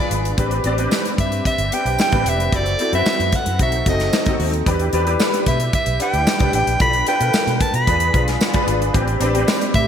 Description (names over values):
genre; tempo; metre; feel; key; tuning
polished 1980s jazz-funk pop; 112 BPM; 4/4; straight; unclear; A4 = 441 Hz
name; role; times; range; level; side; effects
bright soprano saxophone; melody; 0.0-9.9 s; D5 to B5; -21 LUFS; right 1 dB; ping-pong delay
clear concert grand piano; accompaniment; 0.0-9.9 s; C4 to D5; -21 LUFS; left 2 dB; ensemble chorus
fingered electric bass with an envelope filter; bass; 0.1-9.9 s; E1 to B2; -22 LUFS; equal; none
modern studio drum kit; drums; 0.1-9.9 s; hi-hat, kick drum, snare drum; -21 LUFS; equal; gated reverb
tambourine; percussion; 0.9-9.6 s; none; -35 LUFS; right 7 dB; none
room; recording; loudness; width
moderate lush hall reverb, RT60 2.3 s; bright 1980s-style digital production; -16 LUFS; side -8 dB against mid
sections
0.0-9.9 A section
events
none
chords
0.4 Am11; 2.5 F#m7b5; 3.6 B7b9; 4.7 Em7; 6.8 Bm7b5; 7.9 E7b9; 8.9 Am11